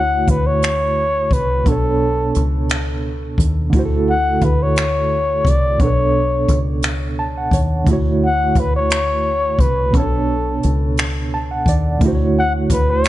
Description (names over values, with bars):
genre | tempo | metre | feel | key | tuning
slow six-eight R&B | 58 BPM (dotted quarters) | 6/8 | straight | D major | A4 = 440 Hz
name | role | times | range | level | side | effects
breathy flugelhorn | melody | 0.0-13.1 s | A4 to F#5 | -20 LUFS | left 2 dB | tape echo
reed electric piano | accompaniment | 0.0-13.1 s | B2 to A5 | -21 LUFS | right 3 dB | overdrive, tremolo
deep dub fingered electric bass | bass | 0.0-13.1 s | B1 to Eb2 | -20 LUFS | equal | none
jazz brush drum kit | drums | 0.3-13.1 s | finger snaps, hi-hat, kick drum | -20 LUFS | equal | none
room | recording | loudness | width
studio ambience | nothing above 10.7 kHz | -15 LUFS | side -15 dB against mid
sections
0.0-13.1 A section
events
reed electric piano fill 6.8-7.9, 11.0-12.0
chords
0.0 Dmaj7; 1.7 Bm9; 3.7 Dmaj7; 5.8 Bm9; 7.9 Dmaj7; 9.9 Bm9; 12.0 Dmaj7